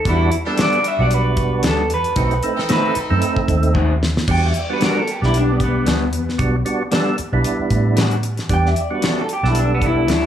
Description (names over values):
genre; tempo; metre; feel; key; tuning
straight-eighth soul blues; 114 BPM; 4/4; swing 55% on 16ths; E minor; A4 = 440 Hz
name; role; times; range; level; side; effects
electric guitar through a small old amp; melody; 0.0-10.3 s; B3 to G5; -21 LUFS; equal; spring reverb, plate reverb
brilliant horn section; sustained chords; 0.0-3.4 s; G3 to A4; -29 LUFS; left 2 dB; none
percussive tonewheel organ; accompaniment; 0.1-10.1 s; G3 to A4; -22 LUFS; right 4 dB; slow rotary speaker, overdrive, chorus vibrato
vintage muted fingered electric bass; bass; 0.1-10.3 s; B1 to A2; -19 LUFS; equal; none
damped 70s drum kit; drums; 0.1-10.2 s; crash cymbal, hi-hat, kick drum, snare drum; -22 LUFS; equal; none
electric guitar through a small old amp; stabs; 0.6-10.3 s; D#3 to F#4; -25 LUFS; left 2 dB; spring reverb, analog delay
room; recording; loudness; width
moderate club reverb, RT60 0.5 s; studio reverb; -15 LUFS; side -10 dB against mid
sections
0.0-4.3 A section; 4.3-10.3 B section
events
clean electric guitar solo 0.0-4.3; drum fill 3.8-4.3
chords
0.1 Em9; 2.2 B7b9; 4.3 Em9